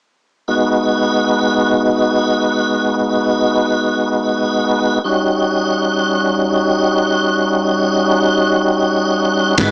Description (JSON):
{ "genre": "slow blues", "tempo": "free time", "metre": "none", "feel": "none", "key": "G# minor", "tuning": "A4 = 440 Hz", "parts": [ { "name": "tonewheel organ", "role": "sustained chords", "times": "0.5-9.7 s", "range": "G3 to B4", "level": "-13 LUFS", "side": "equal", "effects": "slow rotary speaker, overdrive, chorus vibrato" }, { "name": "vintage muted fingered electric bass", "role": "bass", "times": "9.6-9.7 s", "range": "G#2", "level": "-18 LUFS", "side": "equal", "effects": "none" }, { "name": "warm soul drum kit", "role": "drums", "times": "9.6-9.7 s", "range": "kick drum, ride cymbal", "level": "-14 LUFS", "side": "equal", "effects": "none" } ], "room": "moderate large studio reverb, RT60 1.0 s", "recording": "band playing live in one room, small speaker sound", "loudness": "-13 LUFS", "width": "side -30 dB against mid", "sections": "0.5-9.6 A section", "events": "none", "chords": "0.5 G#m7; 5.0 D#7#9" }